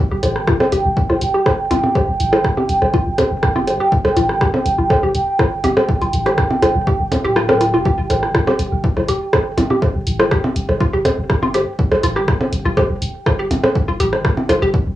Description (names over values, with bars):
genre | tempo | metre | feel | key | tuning
minimal techno | 122 BPM | 4/4 | straight | unclear | A4 = 440 Hz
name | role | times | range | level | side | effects
deep dark ambient pad | texture | 0.0-15.0 s | G5 | -22 LUFS | right 2 dB | chorus, built-in reverb, sidechain pumping, cassette tape
hollow square pluck | riff | 0.1-14.7 s | F4 to Bb4 | -20 LUFS | left 1 dB | analog chorus, sidechain pumping, cassette tape, tape echo
punchy sub bass | bass | 0.1-15.0 s | D1 to A1 | -22 LUFS | equal | sidechain pumping
punchy analog drum machine | drums | 0.2-14.6 s | hi-hat, rim click | -23 LUFS | equal | cassette tape
electronic rim click and percussion blips | percussion | 0.2-14.6 s | none | -18 LUFS | right 1 dB | overdrive, cassette tape, analog delay
electronic kick drum | drums | 0.5-14.8 s | none | -19 LUFS | equal | cassette tape
room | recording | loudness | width
moderate small room ambience, RT60 0.5 s | home recording on cassette, small room ambience | -14 LUFS | side -14 dB against mid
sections
0.0-15.0 A section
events
filter sweep on synth arpeggio sound 0.0-15.0; kick drops out 7.4-7.9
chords
0.0 G7(no3)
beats
0.48 0.97 1.46 | 1.95 2.44 2.94 3.43 | 3.92 4.41 4.90 5.39 | 5.89 6.38 6.87 7.36 | 7.85 8.35 8.84 9.33 | 9.82 10.31 10.80 11.30 | 11.79 12.28 12.77 13.26 | 13.76 14.25 14.74